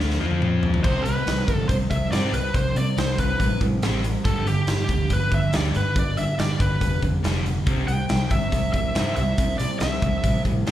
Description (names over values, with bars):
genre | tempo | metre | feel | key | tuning
hard rock | 141 BPM | 4/4 | straight | unclear | A4 = 441 Hz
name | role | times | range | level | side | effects
crunchy overdriven guitar | riff | 0.0-10.7 s | G2 to F4 | -30 LUFS | right 9 dB | slapback echo
sludgy distorted guitar | riff | 0.0-10.7 s | G2 to F4 | -28 LUFS | left 6 dB | overdrive, slapback echo
picked electric bass | bass | 0.0-10.7 s | F1 to C3 | -25 LUFS | equal | none
big rock drum kit | drums | 0.0-10.7 s | crash cymbal, hi-hat, kick drum, snare drum, toms | -25 LUFS | equal | none
biting lead guitar | melody | 0.8-10.4 s | G4 to G5 | -27 LUFS | equal | overdrive, slapback echo, plate reverb
room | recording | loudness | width
light reverb | live gig heard through the venue's PA, club reverb | -20 LUFS | side -12 dB against mid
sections
0.8-10.7 A section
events
drum fill 0.0-0.8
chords
0.2 F5; 0.8 C5; 4.3 G; 7.7 C